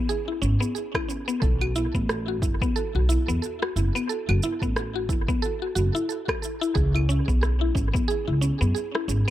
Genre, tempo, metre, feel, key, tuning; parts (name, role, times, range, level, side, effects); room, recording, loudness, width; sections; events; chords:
organic downtempo; 90 BPM; 4/4; swing 58% on 16ths; A4 = 440 Hz
mallet-like synth pluck; arpeggios; 0.0-9.3 s; B3 to A4; -27 LUFS; left 1 dB; chorus, tape echo
electronic shaker, rim click and claves; drums; 0.1-9.2 s; -32 LUFS; right 2 dB; overdrive, dub echo
upright bass; bass; 0.4-9.2 s; F#1 to F#2; -24 LUFS; equal
electronic kick drum; drums; 0.9-8.1 s; -27 LUFS; equal; overdrive
light reverb; echo-heavy mix; -22 LUFS; side -13 dB against mid
0.0-9.3 A section
0.0 C#m7; 1.4 B7sus4; 6.8 C#m7